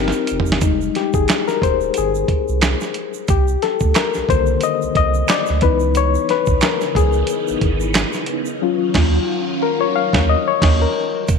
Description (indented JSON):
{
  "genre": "R&B, neo-soul",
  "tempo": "90 BPM",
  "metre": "4/4",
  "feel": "swing 55% on 16ths",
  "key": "unclear",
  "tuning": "A4 = 440 Hz",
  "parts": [
    { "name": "barky reed electric piano", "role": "accompaniment", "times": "0.0-11.3 s", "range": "D3 to F5", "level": "-18 LUFS", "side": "left 10 dB", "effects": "overdrive, fast tremolo" },
    { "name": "phased string machine", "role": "sustained chords", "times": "0.0-0.6, 6.0-11.3 s", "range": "Db3 to Bb4", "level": "-26 LUFS", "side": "right 2 dB", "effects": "ensemble chorus, phaser" },
    { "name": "warm sub bass", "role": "bass", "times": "0.0-11.4 s", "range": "Eb1 to Eb2", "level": "-19 LUFS", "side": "right 2 dB", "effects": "none" },
    { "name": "dusty soul sampler-style drum kit", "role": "drums", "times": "0.1-11.4 s", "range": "crash cymbal, handclaps, hi-hat, kick drum, snare drum, toms", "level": "-20 LUFS", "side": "right 2 dB", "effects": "none" },
    { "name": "egg shaker and finger snaps", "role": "percussion", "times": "0.1-11.4 s", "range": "none", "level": "-30 LUFS", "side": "right 16 dB", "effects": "none" }
  ],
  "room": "moderate echo chamber reverb, RT60 2.3 s",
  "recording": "1960s-style stereo with parts hard left and right",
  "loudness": "-15 LUFS",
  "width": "side -5 dB against mid",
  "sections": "0.6-11.3 A section",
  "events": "drum fill 0.0-0.6; reed electric piano solo 0.6-11.3; band accent 8.6-11.3",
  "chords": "0.0 F9sus4; 0.6 Fm9 (rootless); 3.3 Cm9; 5.6 Dbm9; 8.6 Ebm9",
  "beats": "| 0.62 1.28 1.95 2.62 | 3.28 3.95 4.62 5.28 | 5.95 6.62 7.28 7.95 | 8.62 9.28 9.95 10.62 | 11.28"
}